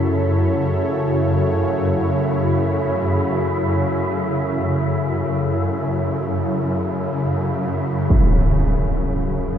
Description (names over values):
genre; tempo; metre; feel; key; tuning
dark ambient drone; free time; none; none; F# minor; A4 = 441 Hz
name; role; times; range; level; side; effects
dark analog pad; sustained chords; 0.0-8.1 s; E4 to C#5; -25 LUFS; equal; chorus
swarming drone; drone; 0.0-9.6 s; F#2 to C#3; -20 LUFS; equal; built-in reverb
wind-like tuned noise texture; texture; 0.0-8.1 s; E4 to E5; -28 LUFS; right 1 dB; built-in reverb
impact; percussion; 8.1-8.3 s; none; -17 LUFS; equal; low-pass filter on sfx
room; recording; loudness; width
wet huge ambient reverb, RT60 7.5 s; in a vast, echoing space, nothing above 10.9 kHz; -18 LUFS; side -9 dB against mid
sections
0.0-8.1 A section; 8.1-9.6 B section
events
filter sweep on synth drone 0.0-8.1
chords
0.0 F#m; 8.1 F#5